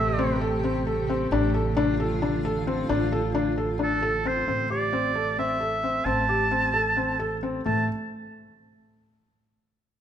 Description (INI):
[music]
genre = contemporary instrumental, chamber music in an uneven meter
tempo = 265 BPM (eighths)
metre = 7/8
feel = straight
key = A minor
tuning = A4 = 439 Hz
[part]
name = bright oboe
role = melody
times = 0.0-0.4, 3.8-7.9 s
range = A4 to A5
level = -26 LUFS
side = right 2 dB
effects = none
[part]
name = granular cloud pad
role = sustained chords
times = 0.0-4.5 s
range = C3 to G4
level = -32 LUFS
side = right 1 dB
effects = built-in reverb
[part]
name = felt-muted upright piano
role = arpeggios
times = 0.0-7.9 s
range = A3 to A4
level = -27 LUFS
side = left 3 dB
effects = none
[part]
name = upright bass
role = bass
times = 0.0-7.9 s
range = A1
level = -29 LUFS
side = right 2 dB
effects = none
[sound]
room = wet recital hall reverb, RT60 1.8 s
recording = minimal, uncompressed stereo recording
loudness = -23 LUFS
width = side -9 dB against mid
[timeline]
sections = 0.0-4.5 A section; 4.5-7.7 B section; 7.7-9.2 C section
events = none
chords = 0.0 Am7; 1.3 Dm; 4.5 Am; 7.7 N.C.